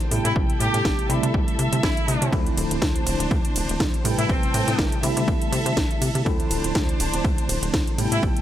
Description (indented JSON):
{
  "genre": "filtered disco house",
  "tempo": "122 BPM",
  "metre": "4/4",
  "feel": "swing 55% on 16ths",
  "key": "D dorian",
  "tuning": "A4 = 442 Hz",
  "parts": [
    { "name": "tine electric piano", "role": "accompaniment", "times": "0.0-8.4 s", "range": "C3 to B4", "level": "-27 LUFS", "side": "equal", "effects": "medium stereo tremolo, phaser, sidechain pumping" },
    { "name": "rich symphonic violin section", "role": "sustained chords", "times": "0.0-8.4 s", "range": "D4 to G5", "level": "-30 LUFS", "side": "equal", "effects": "sidechain pumping" },
    { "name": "house drum kit", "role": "drums", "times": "0.0-8.4 s", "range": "hi-hat, ride cymbal, snare drum", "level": "-28 LUFS", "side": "right 1 dB", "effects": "overdrive, sidechain pumping on hats, sidechain pumping on cymbals" },
    { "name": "plucky analog bass", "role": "bass", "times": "0.1-8.4 s", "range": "D1 to C3", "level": "-26 LUFS", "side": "equal", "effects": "sidechain pumping" },
    { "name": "clear horn section", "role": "melody", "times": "0.2-5.0, 8.1-8.2 s", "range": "C4 to G4", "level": "-28 LUFS", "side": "equal", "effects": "sidechain pumping, dub echo" },
    { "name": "electronic kick drum", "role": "drums", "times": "0.4-8.3 s", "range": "none", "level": "-24 LUFS", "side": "equal", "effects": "overdrive" }
  ],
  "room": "digital ambience",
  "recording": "none",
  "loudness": "-20 LUFS",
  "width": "side -12 dB against mid",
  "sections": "0.0-8.4 A section",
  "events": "none",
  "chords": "0.1 Am7; 1.1 C6; 2.3 Dm7; 4.0 Am7; 5.0 C6; 6.3 Dm7"
}